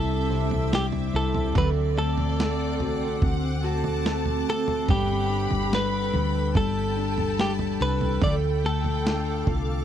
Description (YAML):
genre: pop ballad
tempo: 72 BPM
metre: 4/4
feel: straight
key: unclear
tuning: A4 = 440 Hz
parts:
  - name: direct-recorded clean electric guitar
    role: melody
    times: 0.0-9.8 s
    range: G4 to D5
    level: -29 LUFS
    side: equal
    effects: none
  - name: warm symphonic violin section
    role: second line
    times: 0.0-9.8 s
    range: D5 to B5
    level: -36 LUFS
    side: left 1 dB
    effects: none
  - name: bell-like tine electric piano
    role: accompaniment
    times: 0.0-9.8 s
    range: C3 to F#4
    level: -29 LUFS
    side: left 9 dB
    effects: none
  - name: shimmering ambient pad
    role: sustained chords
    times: 0.0-9.8 s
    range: C4 to D6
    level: -35 LUFS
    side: right 3 dB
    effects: chorus, built-in reverb
  - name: picked steel-string acoustic guitar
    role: arpeggios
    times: 0.0-9.8 s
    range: D3 to C5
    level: -34 LUFS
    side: right 11 dB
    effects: none
  - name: woody fretless electric bass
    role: bass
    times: 0.0-9.8 s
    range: G1 to D2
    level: -28 LUFS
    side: equal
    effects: none
  - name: dusty soul sampler-style drum kit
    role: drums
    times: 0.5-9.7 s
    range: kick drum, snare drum, toms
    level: -28 LUFS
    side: right 2 dB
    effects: none
room: little or no reverb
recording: dry, close 1970s-style studio recording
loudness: -22 LUFS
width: side -10 dB against mid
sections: 0.0-9.8 A section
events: none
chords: 0.0 Cadd9; 1.6 D7; 4.9 Gadd9; 8.2 Dm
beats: 0.72 | 1.56 2.39 3.22 4.06 | 4.89 5.72 6.56 7.39 | 8.22 9.06